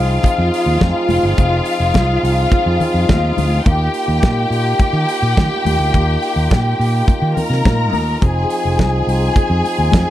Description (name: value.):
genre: disco.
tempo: 105 BPM.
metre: 4/4.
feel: straight.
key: F minor.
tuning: A4 = 439 Hz.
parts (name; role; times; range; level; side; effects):
clear symphonic string section; second line; 0.0-10.1 s; F4 to Bb5; -18 LUFS; left 2 dB; none.
percussive tonewheel organ; sustained chords; 0.0-10.1 s; F3 to Ab4; -22 LUFS; right 1 dB; slow rotary speaker.
fingered electric bass; bass; 0.0-10.0 s; F1 to Eb3; -17 LUFS; equal; none.
damped 70s drum kit; drums; 0.2-10.1 s; hi-hat, kick drum, snare drum; -18 LUFS; equal; none.
congas; percussion; 0.2-10.1 s; none; -24 LUFS; left 4 dB; none.
room: light reverb, studio ambience.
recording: dark, warm production.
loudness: -13 LUFS.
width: side -13 dB against mid.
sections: 0.0-10.1 A section.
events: none.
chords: 0.0 Fm7; 3.7 Eb; 8.2 Fm7.